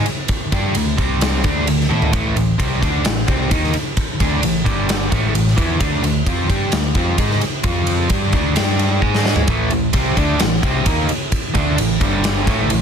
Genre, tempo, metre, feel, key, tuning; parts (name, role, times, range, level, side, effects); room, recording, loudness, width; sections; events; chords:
hard rock; 131 BPM; 4/4; straight; A4 = 440 Hz
overdriven electric guitar; riff; 0.0-12.8 s; G2 to A4; -19 LUFS; equal
hollow-body short-scale picked electric bass; bass; 0.0-12.8 s; G1 to A2; -21 LUFS; equal
big rock drum kit; drums; 0.1-12.8 s; kick drum, ride cymbal, snare drum, toms; -19 LUFS; equal; soft clipping on kick
sludgy distorted guitar; riff; 9.5-12.8 s; G2 to D#4; -22 LUFS; right 2 dB; overdrive
light reverb; dense, heavily limited modern master; -15 LUFS; side -7 dB against mid
0.0-12.8 A section
drum fill 1.9, 9.0-9.5
0.0 D5; 1.0 C5; 1.4 D5; 2.1 A5; 4.7 G5; 5.1 A5; 5.8 D5; 7.6 F5; 8.1 D5; 8.6 G5; 9.0 G#5; 9.5 A5; 12.0 G5